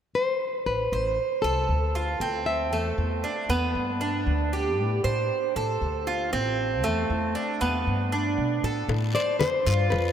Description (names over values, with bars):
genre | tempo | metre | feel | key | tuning
latin, Cuban son and guajira | 117 BPM | 4/4 | straight | A minor | A4 = 440 Hz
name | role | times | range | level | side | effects
nylon-string guitar | melody | 0.2-3.5, 9.1-10.1 s | A4 to E5 | -28 LUFS | left 3 dB | none
upright bass | bass | 0.7-10.1 s | A1 to B2 | -28 LUFS | left 1 dB | none
Cuban tres | arpeggios | 0.9-10.1 s | A3 to C5 | -26 LUFS | right 3 dB | none
bongos | percussion | 8.9-10.1 s | none | -35 LUFS | left 7 dB | none
congas | percussion | 8.9-10.1 s | none | -33 LUFS | left 3 dB | none
guiro | percussion | 8.9-10.1 s | none | -38 LUFS | left 6 dB | none
room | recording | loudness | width
wet cathedral reverb, RT60 7.0 s | in a vast, echoing space | -24 LUFS | side -9 dB against mid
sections
0.7-8.9 A section; 8.9-10.1 B section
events
none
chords
0.0 N.C.; 0.7 Am; 1.7 Dm7; 2.7 E7sus4; 3.8 G; 4.8 Am7; 5.8 Dm7; 6.8 E7sus4; 7.9 G; 8.9 Am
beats
0.15 | 0.66 1.18 1.69 2.21 | 2.72 3.24 3.75 4.26 | 4.78 5.29 5.81 6.32 | 6.84 7.35 7.87 8.38 | 8.90 9.41 9.93